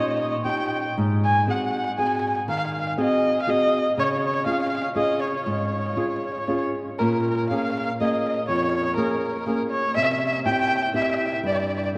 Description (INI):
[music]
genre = italian folk, Italian serenade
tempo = 121 BPM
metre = 3/4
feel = rubato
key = Db major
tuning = A4 = 436 Hz
[part]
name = dark erhu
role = melody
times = 0.0-11.9 s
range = Bb4 to Ab5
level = -26 LUFS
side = equal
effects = none
[part]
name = flamenco guitar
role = accompaniment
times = 0.0-12.0 s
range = F2 to Ab4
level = -27 LUFS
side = equal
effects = none
[sound]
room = wet cathedral reverb, RT60 5.9 s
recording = in a vast, echoing space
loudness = -24 LUFS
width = mono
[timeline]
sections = 0.0-7.0 A section; 7.0-12.0 B section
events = none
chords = 0.0 Eb7; 1.0 Ab7; 4.0 Db; 7.0 Bbm7; 9.9 C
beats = 0.45 | 0.96 1.47 1.97 | 2.47 2.97 3.46 | 3.96 4.45 4.95 | 5.44 5.95 6.47 | 6.98 7.49 7.99 | 8.48 8.97 9.46 | 9.95 10.44 10.94 | 11.44 11.95